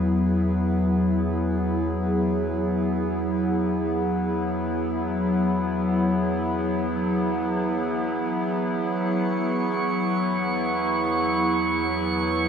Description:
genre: ambient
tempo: free time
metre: none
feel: none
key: E major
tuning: A4 = 438 Hz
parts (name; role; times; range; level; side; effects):
- warbly tape-like pad; sustained chords; 0.0-12.5 s; F#3 to G#4; -23 LUFS; left 1 dB; chorus, built-in reverb
- deep rumbling drone; bass; 0.0-12.5 s; E2; -33 LUFS; equal; built-in reverb
- pedal harmonium; drone; 0.0-12.5 s; E3 to B3; -35 LUFS; right 2 dB; none
- drifting glass-harmonics texture; texture; 9.1-12.5 s; C#6; -27 LUFS; right 4 dB; chorus, built-in reverb
room: wet huge ambient reverb, RT60 7.4 s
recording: dreamy mix soaked in reverb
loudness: -22 LUFS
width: side -7 dB against mid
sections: 0.0-12.5 A section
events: fade-in on harmonium 0.0-12.5; fade-out on synth drone 0.0-12.5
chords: 0.0 E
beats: free time

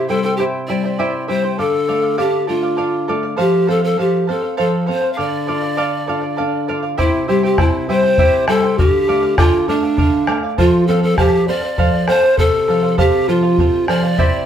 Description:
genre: andean folk, Andean ensemble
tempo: 67 BPM (dotted quarters)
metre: 6/8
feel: straight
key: unclear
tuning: A4 = 440 Hz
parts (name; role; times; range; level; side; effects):
- breathy pan flute; melody; 0.0-14.5 s; D4 to F5; -17 LUFS; equal; none
- charango; accompaniment; 0.0-14.5 s; E4 to G5; -21 LUFS; right 3 dB; none
- nylon-string guitar; accompaniment; 0.0-14.5 s; C3 to F4; -21 LUFS; left 2 dB; none
- bombo; percussion; 7.0-14.3 s; none; -18 LUFS; equal; none
room: wet studio reverb, RT60 0.8 s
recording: band playing live in one room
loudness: -14 LUFS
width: side -9 dB against mid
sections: 0.0-7.0 A section; 7.0-14.5 A section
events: none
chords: 0.0 C; 1.6 Dm; 3.4 F; 5.2 Dm; 7.0 C; 8.8 Dm; 10.6 F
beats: 0.69 | 1.59 2.49 | 3.39 4.29 | 5.19 6.09 | 6.99 7.89 | 8.79 9.69 | 10.59 11.48 | 12.38 13.29 | 14.19

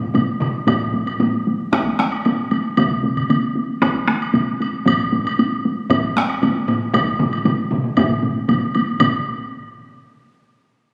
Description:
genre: japanese traditional, taiko drum ensemble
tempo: 116 BPM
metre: 4/4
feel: straight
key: none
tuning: none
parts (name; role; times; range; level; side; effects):
- taiko ensemble; percussion; 0.0-9.2 s; none; -21 LUFS; equal; none
- taiko ensemble; percussion; 0.1-9.5 s; none; -28 LUFS; equal; none
- taiko ensemble; percussion; 0.1-9.5 s; none; -28 LUFS; equal; none
- woodblock; percussion; 0.1-9.2 s; none; -27 LUFS; equal; none
- taiko ensemble; percussion; 0.7-9.2 s; none; -28 LUFS; equal; none
room: wet scoring stage reverb, RT60 2.1 s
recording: recorded on a phone in the room, club reverb, compression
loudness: -19 LUFS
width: mono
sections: 0.0-9.0 A section; 9.0-10.9 B section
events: speeding up 0.0-10.9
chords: none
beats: 0.15 | 0.68 1.20 1.73 2.25 | 2.78 3.30 3.82 4.34 | 4.87 5.39 5.90 6.42 | 6.94 7.46 7.97 8.49 | 9.00

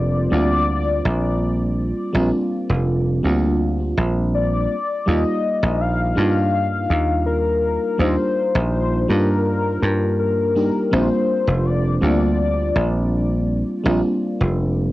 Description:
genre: vaporwave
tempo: 82 BPM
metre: 4/4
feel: straight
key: Bb major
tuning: A4 = 439 Hz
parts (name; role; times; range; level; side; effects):
- warm velvety synth lead; melody; 0.0-13.4 s; Bb4 to F5; -23 LUFS; left 4 dB; chorus, cassette tape, tape echo
- mellow FM electric piano; accompaniment; 0.0-14.9 s; G3 to G4; -22 LUFS; equal; lush chorus, cassette tape, tape echo
- dry thumbed slap bass; bass; 0.0-14.9 s; F1 to G2; -20 LUFS; right 1 dB; none
room: light reverb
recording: home recording on cassette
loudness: -17 LUFS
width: side -17 dB against mid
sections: 0.0-14.9 A section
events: none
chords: 0.0 Bb69; 4.7 Ebmaj9; 10.9 Bb69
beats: 0.68 1.41 | 2.15 2.88 3.61 4.34 | 5.07 5.80 6.54 7.27 | 8.00 8.73 9.46 10.20 | 10.93 11.66 12.39 13.12 | 13.85 14.59

